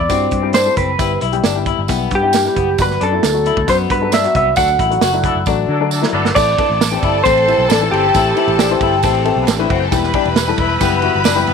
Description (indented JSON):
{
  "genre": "uptempo 1960s-style soul",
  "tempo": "134 BPM",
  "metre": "4/4",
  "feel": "straight",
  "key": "unclear",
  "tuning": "A4 = 440 Hz",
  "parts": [
    { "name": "electric guitar through a small old amp", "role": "melody", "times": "0.0-9.7 s", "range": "G4 to F#5", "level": "-16 LUFS", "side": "right 1 dB", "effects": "analog chorus" },
    { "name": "warm upright piano", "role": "accompaniment", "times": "0.0-11.5 s", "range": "E3 to C5", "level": "-21 LUFS", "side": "left 12 dB", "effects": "tube saturation" },
    { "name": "picked electric bass", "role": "bass", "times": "0.0-11.5 s", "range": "E1 to D3", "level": "-21 LUFS", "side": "right 1 dB", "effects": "none" },
    { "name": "electric guitar through a small old amp", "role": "riff", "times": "0.1-11.5 s", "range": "B3 to F#4", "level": "-22 LUFS", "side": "left 14 dB", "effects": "spring reverb" },
    { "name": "warm soul drum kit", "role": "drums", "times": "0.1-11.5 s", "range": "crash cymbal, hi-hat, kick drum, ride cymbal, snare drum", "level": "-20 LUFS", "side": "right 4 dB", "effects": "none" },
    { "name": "tambourine", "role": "percussion", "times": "0.1-11.4 s", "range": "none", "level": "-28 LUFS", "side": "right 13 dB", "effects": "none" },
    { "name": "warm horn section", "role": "second line", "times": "5.2-11.5 s", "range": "E3 to B4", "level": "-24 LUFS", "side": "equal", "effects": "none" },
    { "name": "rich studio string section", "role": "second line", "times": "6.4-11.5 s", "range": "B3 to B5", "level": "-21 LUFS", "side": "equal", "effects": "none" }
  ],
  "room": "light reverb, studio reverb",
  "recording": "1960s-style stereo with parts hard left and right",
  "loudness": "-12 LUFS",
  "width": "side -6 dB against mid",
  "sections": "0.0-6.4 A section; 6.4-11.5 B section",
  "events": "band accent 4.6-6.4; drum fill 5.5-6.4",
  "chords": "0.0 C/G; 1.0 Em/G; 2.8 Bm/G; 4.6 D; 6.4 Am; 9.9 Em"
}